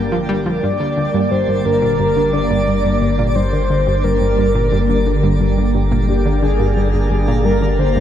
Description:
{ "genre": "ambient, sequencer-driven space music", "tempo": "88 BPM", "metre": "4/4", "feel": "straight", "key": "G minor", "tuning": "A4 = 440 Hz", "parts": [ { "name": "phased analog pad", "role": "sustained chords", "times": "0.0-8.0 s", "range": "D3 to G5", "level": "-20 LUFS", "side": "equal", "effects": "phaser, chorus, shimmer reverb" }, { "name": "analog pluck", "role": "riff", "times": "0.0-8.0 s", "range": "G2 to G3", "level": "-20 LUFS", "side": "equal", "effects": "chorus, ping-pong delay" }, { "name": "warm sub bass", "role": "bass", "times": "0.0-8.0 s", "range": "G1", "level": "-19 LUFS", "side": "equal", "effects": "none" }, { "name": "twinkling granular texture", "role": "texture", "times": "0.0-8.0 s", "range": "D4 to D5", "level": "-28 LUFS", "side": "right 1 dB", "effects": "built-in reverb, shimmer reverb" }, { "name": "breathy flute-like synth lead", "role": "melody", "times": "0.6-8.0 s", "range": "G4 to D5", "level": "-20 LUFS", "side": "left 1 dB", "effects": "wide subtle chorus, shimmer reverb, ping-pong delay" } ], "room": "wet concert hall reverb, RT60 2.0 s, digital ambience", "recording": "none", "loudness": "-14 LUFS", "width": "side -10 dB against mid", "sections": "0.0-8.0 A section", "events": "none", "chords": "0.0 Gm", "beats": "| 0.63 1.31 1.99 2.68 | 3.36 4.04 4.72 5.40 | 6.08 6.77 7.45" }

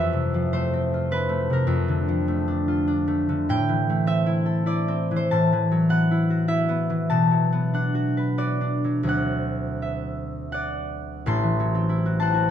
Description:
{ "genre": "classical, solo harp piece", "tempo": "76-105 BPM", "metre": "3/4", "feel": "rubato", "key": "A dorian from 3.5 s", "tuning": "A4 = 440 Hz", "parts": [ { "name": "concert harp", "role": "solo", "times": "0.0-12.5 s", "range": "A1 to C6", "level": "-21 LUFS", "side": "equal", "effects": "none" } ], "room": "light reverb", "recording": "dark, warm production", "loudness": "-21 LUFS", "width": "side -9 dB against mid", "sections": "0.0-11.3 A section; 11.3-12.5 B section", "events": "none", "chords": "0.0 Fmaj7; 1.7 Bbmaj7/F; 3.5 Am7; 5.3 Esus24/A; 7.1 Bm7; 9.1 D9; 11.3 Am6", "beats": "0.54 1.12 | 1.70 2.30 2.88 | 3.51 4.09 4.67 | 5.31 5.91 6.50 | 7.13 7.75 8.39 | 9.08 9.81 10.53 | 11.27 11.90" }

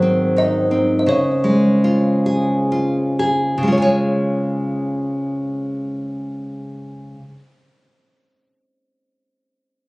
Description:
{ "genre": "children's music, lullaby", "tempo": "57-90 BPM", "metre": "3/4", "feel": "rubato", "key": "Db major", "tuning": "A4 = 439 Hz", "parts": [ { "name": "kalimba", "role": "melody", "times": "0.0-2.7 s", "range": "C5 to Eb5", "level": "-21 LUFS", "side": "equal", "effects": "plate reverb" }, { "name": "nylon-string guitar", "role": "accompaniment", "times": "0.0-7.4 s", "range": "Ab2 to Ab5", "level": "-17 LUFS", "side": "equal", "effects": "none" } ], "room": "wet studio reverb, RT60 0.5 s", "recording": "recorded on a phone in the room, club reverb", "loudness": "-16 LUFS", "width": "side -24 dB against mid", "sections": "0.0-3.7 A section; 3.7-9.8 B section", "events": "slowing down 0.0-3.7", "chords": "0.0 Ab7; 1.1 Db", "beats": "0.36 | 1.07 1.84 2.71 | 3.69 4.73 5.75 | 6.74" }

